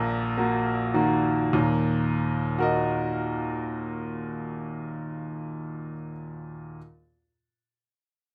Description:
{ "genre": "classical, piano waltz", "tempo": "99-120 BPM", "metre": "3/4", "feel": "rubato", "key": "Eb minor", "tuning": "A4 = 438 Hz", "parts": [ { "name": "bright upright piano", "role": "solo", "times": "0.0-6.8 s", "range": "Bb1 to Gb5", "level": "-28 LUFS", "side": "equal", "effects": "none" } ], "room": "light reverb", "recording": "close, detailed microphones", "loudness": "-27 LUFS", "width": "mono", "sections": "0.0-1.5 A section; 1.5-4.7 B section", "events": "slowing down 0.0-1.5", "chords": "0.0 Ebm" }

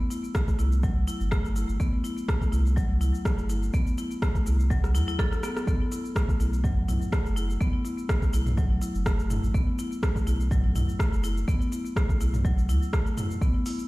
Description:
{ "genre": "afro house", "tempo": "124 BPM", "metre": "4/4", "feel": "swing 54% on 16ths", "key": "unclear", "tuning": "A4 = 441 Hz", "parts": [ { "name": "marimba with hard mallets", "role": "arpeggios", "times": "0.1-13.8 s", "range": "F#3 to A4", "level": "-32 LUFS", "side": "left 1 dB", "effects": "sidechain pumping, low-pass filter, ping-pong delay" }, { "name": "deep house drum kit", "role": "drums", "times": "0.1-13.9 s", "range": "hi-hat, rim click, shaker, toms", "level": "-34 LUFS", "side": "equal", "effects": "overdrive" }, { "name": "electronic kick drum", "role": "drums", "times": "0.3-13.5 s", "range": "none", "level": "-26 LUFS", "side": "equal", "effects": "overdrive" }, { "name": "warm sub bass", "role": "bass", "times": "0.6-13.5 s", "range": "F#1 to E2", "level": "-25 LUFS", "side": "equal", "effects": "sidechain pumping" } ], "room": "little or no reverb", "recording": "played on a big sound system in a bare room, stone room reverb", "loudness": "-24 LUFS", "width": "side -20 dB against mid", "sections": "0.0-13.9 A section", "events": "drum fill 5.3-5.7", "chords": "0.0 C; 5.7 B7(no3)" }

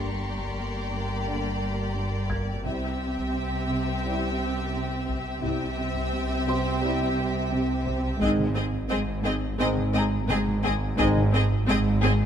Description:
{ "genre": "cinematic, suspense film score", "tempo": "86 BPM", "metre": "4/4", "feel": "straight", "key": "unclear", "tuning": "A4 = 436 Hz", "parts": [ { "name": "clear symphonic violin section", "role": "melody", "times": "0.0-12.1 s", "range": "D5 to E5", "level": "-35 LUFS", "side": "left 2 dB", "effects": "none" }, { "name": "rich symphonic violin section", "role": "second line", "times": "0.0-12.1 s", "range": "G4 to Ab4", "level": "-33 LUFS", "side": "left 2 dB", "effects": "none" }, { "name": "rich symphonic viola section", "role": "accompaniment", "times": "0.0-12.1 s", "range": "Bb3 to C4", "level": "-33 LUFS", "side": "right 1 dB", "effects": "none" }, { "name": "bright trombone section", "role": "sustained chords", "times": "0.0-11.2 s", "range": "C3 to Ab3", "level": "-35 LUFS", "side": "right 2 dB", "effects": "none" }, { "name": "mellow French horn section", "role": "sustained chords", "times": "0.0-11.2 s", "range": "Bb3 to E4", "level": "-33 LUFS", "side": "left 3 dB", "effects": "none" }, { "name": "dark symphonic cello section", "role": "riff", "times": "0.0-12.2 s", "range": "G2 to C4", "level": "-33 LUFS", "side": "right 1 dB", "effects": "none" }, { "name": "rich symphonic double bass section", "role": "bass", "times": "0.0-12.3 s", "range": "G1 to C2", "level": "-31 LUFS", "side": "right 1 dB", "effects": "none" }, { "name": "warm symphonic cello section", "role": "bass", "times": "0.0-12.3 s", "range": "G2 to C3", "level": "-31 LUFS", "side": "right 1 dB", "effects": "none" }, { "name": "pure sine sub bass", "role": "drone", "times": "0.0-12.3 s", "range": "G1 to C2", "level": "-35 LUFS", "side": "left 1 dB", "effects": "none" }, { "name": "felt-muted upright piano", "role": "texture", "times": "0.0-12.3 s", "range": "C5 to Ab6", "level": "-38 LUFS", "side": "left 2 dB", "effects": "none" }, { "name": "warm symphonic violin section", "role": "texture", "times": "0.0-2.3 s", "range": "Bb5 to C#6", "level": "-40 LUFS", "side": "left 2 dB", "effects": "none" }, { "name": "taiko ensemble", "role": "drums", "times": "0.4-12.2 s", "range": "none", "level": "-37 LUFS", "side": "left 1 dB", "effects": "none" } ], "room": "moderate scoring stage reverb, RT60 1.5 s", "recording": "none", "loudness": "-24 LUFS", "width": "side -8 dB against mid", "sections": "0.0-12.3 A section", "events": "none", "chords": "0.0 Gm; 2.7 C; 8.2 Ab" }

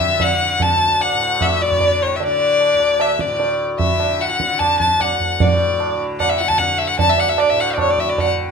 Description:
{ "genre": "indian classical, Hindustani", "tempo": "150 BPM", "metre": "4/4", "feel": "straight", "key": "D raga hamsadhwani", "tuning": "A4 = 440 Hz", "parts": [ { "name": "clear violin", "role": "melody", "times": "0.0-8.3 s", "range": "C#5 to A5", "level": "-16 LUFS", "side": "left 3 dB", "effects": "none" }, { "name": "tanpura", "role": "drone", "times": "0.0-8.5 s", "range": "D2 to D3", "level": "-27 LUFS", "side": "left 1 dB", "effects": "none" }, { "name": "tabla", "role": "percussion", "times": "0.0-8.3 s", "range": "none", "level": "-20 LUFS", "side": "right 5 dB", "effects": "none" } ], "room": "moderate recital hall reverb, RT60 1.4 s", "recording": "minimal, uncompressed stereo recording", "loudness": "-14 LUFS", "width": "side -5 dB against mid", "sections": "0.0-8.5 A section", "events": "none", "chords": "none" }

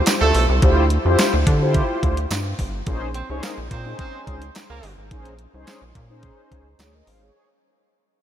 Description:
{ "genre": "early-eighties boogie funk", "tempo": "107 BPM", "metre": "4/4", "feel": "straight", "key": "unclear", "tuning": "A4 = 440 Hz", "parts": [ { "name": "crisp 8-bit digital drum machine", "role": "drums", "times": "0.1-7.2 s", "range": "handclaps, hi-hat, kick drum, snare drum", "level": "-22 LUFS", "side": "equal", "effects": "overdrive" }, { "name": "tambourine", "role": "percussion", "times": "0.1-6.9 s", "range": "none", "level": "-32 LUFS", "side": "right 9 dB", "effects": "none" }, { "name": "warm horn section", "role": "second line", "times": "0.2-4.9 s", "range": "A3 to Db5", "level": "-26 LUFS", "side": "right 3 dB", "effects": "analog delay" }, { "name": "rubbery square bass", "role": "bass", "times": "0.2-7.3 s", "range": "G1 to D3", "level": "-21 LUFS", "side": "equal", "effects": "none" }, { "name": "mellow synth brass", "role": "accompaniment", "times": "0.6-7.5 s", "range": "Db4 to F5", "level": "-24 LUFS", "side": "left 1 dB", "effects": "chorus" } ], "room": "moderate huge ambient reverb, RT60 4.6 s", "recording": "dreamy mix soaked in reverb", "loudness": "-17 LUFS", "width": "side -10 dB against mid", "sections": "0.0-7.4 A section", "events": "fade-out 0.0-7.4", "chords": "0.0 Dm11; 2.9 Bbm11" }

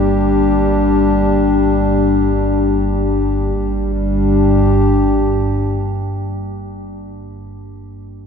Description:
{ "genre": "ambient", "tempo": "free time", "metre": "none", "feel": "none", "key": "G minor", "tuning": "A4 = 439 Hz", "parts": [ { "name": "dark analog pad", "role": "sustained chords", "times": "0.0-7.1 s", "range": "G3 to G4", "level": "-16 LUFS", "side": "left 2 dB", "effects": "chorus" }, { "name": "deep rumbling drone", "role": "drone", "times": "0.0-6.7 s", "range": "G1 to G2", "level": "-19 LUFS", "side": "right 1 dB", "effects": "built-in reverb" }, { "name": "bronze singing bowl", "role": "texture", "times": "0.0-3.6 s", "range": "Bb3 to Bb4", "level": "-38 LUFS", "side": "equal", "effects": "none" } ], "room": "wet cathedral reverb, RT60 6.0 s", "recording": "in a vast, echoing space", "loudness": "-13 LUFS", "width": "side -6 dB against mid", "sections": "0.0-3.6 A section; 3.6-8.3 B section", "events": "none", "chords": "0.0 Gm" }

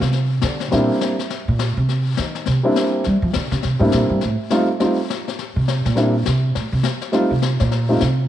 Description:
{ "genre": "jazz piano trio", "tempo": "206 BPM", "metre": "4/4", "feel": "swing 61% on 8ths", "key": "C mixolydian", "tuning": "A4 = 440 Hz", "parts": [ { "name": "upright bass", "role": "bass", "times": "0.0-8.3 s", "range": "G2 to G3", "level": "-19 LUFS", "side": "right 1 dB", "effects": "none" }, { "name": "snare drum and brushed snare drum", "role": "drums", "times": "0.0-8.3 s", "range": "none", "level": "-26 LUFS", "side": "left 9 dB", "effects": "none" }, { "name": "dark baby grand piano", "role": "melody", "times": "0.7-8.0 s", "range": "G3 to F4", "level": "-19 LUFS", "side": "equal", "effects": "none" } ], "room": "light reverb, studio ambience", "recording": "1960s-style stereo", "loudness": "-17 LUFS", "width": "side -12 dB against mid", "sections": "0.0-1.9 A section; 1.9-8.3 A section", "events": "upright bass solo 0.0-8.3", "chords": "0.0 N.C.; 0.7 C7; 4.2 F7; 5.4 C7(no3); 6.6 N.C." }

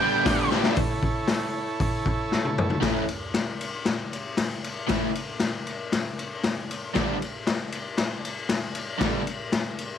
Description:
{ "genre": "garage rock duo or trio", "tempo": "116 BPM", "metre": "4/4", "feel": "straight", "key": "A mixolydian", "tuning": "A4 = 440 Hz", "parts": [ { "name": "octave-fuzz lead guitar", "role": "melody", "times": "0.0-0.5 s", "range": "G5", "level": "-26 LUFS", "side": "right 3 dB", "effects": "distortion" }, { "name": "combo organ", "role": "sustained chords", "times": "0.0-2.8 s", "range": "E4 to D5", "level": "-30 LUFS", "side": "right 3 dB", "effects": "none" }, { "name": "overdriven electric guitar", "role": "riff", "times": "0.0-9.2 s", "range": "G2 to E4", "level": "-28 LUFS", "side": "equal", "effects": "none" }, { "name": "raw garage drum kit", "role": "drums", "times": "0.3-9.9 s", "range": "hi-hat, kick drum, ride cymbal, snare drum, toms", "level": "-26 LUFS", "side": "left 2 dB", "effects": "none" } ], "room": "light reverb", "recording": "1960s-style stereo", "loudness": "-24 LUFS", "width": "side -9 dB against mid", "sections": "0.8-2.8 A section; 2.8-10.0 B section", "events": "drum fill 0.5, 2.3-2.8", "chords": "0.0 G; 0.8 A; 7.0 G" }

